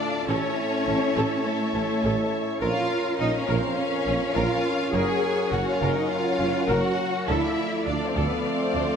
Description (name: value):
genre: cinematic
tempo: 103 BPM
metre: 4/4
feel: straight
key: unclear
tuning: A4 = 440 Hz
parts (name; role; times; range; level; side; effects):
- rich symphonic violin section; melody; 0.0-9.0 s; A4 to Ab5; -33 LUFS; left 4 dB; none
- warm symphonic violin section; second line; 0.0-9.0 s; Db5 to A5; -33 LUFS; left 5 dB; none
- warm symphonic viola section; accompaniment; 0.0-9.0 s; C#4 to D5; -32 LUFS; equal; none
- clear trombone section; sustained chords; 0.0-9.0 s; F2 to Db4; -33 LUFS; right 4 dB; none
- mellow French horn section; sustained chords; 0.0-9.0 s; A4 to D5; -33 LUFS; left 7 dB; none
- pipe organ, sparkling flutes; sustained chords; 0.0-9.0 s; F3 to D5; -31 LUFS; right 1 dB; none
- warm symphonic cello section; bass; 0.0-9.0 s; A3 to Ab4; -28 LUFS; right 1 dB; none
- mellow tuba; bass; 0.3-8.9 s; Gb1 to D2; -32 LUFS; right 3 dB; none
- rich symphonic double bass section; bass; 0.3-8.8 s; Gb1 to D2; -32 LUFS; right 2 dB; none
room: wet scoring stage reverb, RT60 1.7 s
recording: none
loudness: -22 LUFS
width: side -7 dB against mid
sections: 0.0-9.0 A section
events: none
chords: 0.3 A; 2.6 Bbm; 4.9 Gb; 7.3 Dm